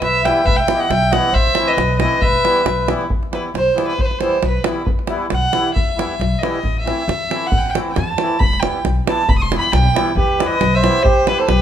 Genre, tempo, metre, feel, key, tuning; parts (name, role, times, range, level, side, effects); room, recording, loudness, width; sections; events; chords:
balkan folk, Balkan wedding band; 136 BPM; 2/4; swing 55% on 16ths; E harmonic minor; A4 = 445 Hz
warm fiddle; melody; 0.0-11.6 s; B4 to D#6; -19 LUFS; right 1 dB
mellow accordion; second line; 0.0-2.9, 10.2-11.6 s; G4 to E5; -19 LUFS; equal
upright bass; bass; 0.0-11.6 s; E1 to E2; -21 LUFS; left 1 dB
davul; percussion; 0.0-11.6 s; -20 LUFS; right 1 dB
accordion; accompaniment; 0.2-11.4 s; E3 to E4; -24 LUFS; left 2 dB; light tremolo tuning
moderate large studio reverb, RT60 1.1 s; band playing live in one room; -14 LUFS; side -10 dB against mid
0.0-3.1 A section; 3.1-10.2 B section; 10.2-11.6 C section
fiddle solo 3.1-10.2
0.0 Em; 1.3 Am; 2.2 Em; 6.6 Am; 8.4 Em